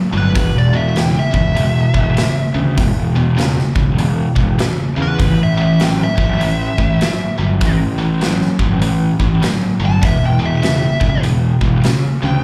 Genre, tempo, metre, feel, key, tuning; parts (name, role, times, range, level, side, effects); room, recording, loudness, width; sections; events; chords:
blues rock power trio and southern rock; 99 BPM; 4/4; swing 62% on 8ths; A4 = 437 Hz
tight distorted guitar; riff; 0.0-12.4 s; E2 to F#3; -20 LUFS; equal; distortion, slapback echo
fuzz fingered electric bass; bass; 0.1-12.4 s; E1 to E2; -19 LUFS; equal; overdrive
nasal lead guitar with a parked wah; melody; 0.2-12.4 s; B4 to A5; -25 LUFS; equal; overdrive, slapback echo
big rock drum kit; drums; 0.4-12.0 s; hi-hat, kick drum, snare drum; -22 LUFS; equal
light reverb; live gig heard through the venue's PA, club reverb; -15 LUFS; mono
0.0-12.4 A section
0.3 E5; 5.2 A5; 10.0 E5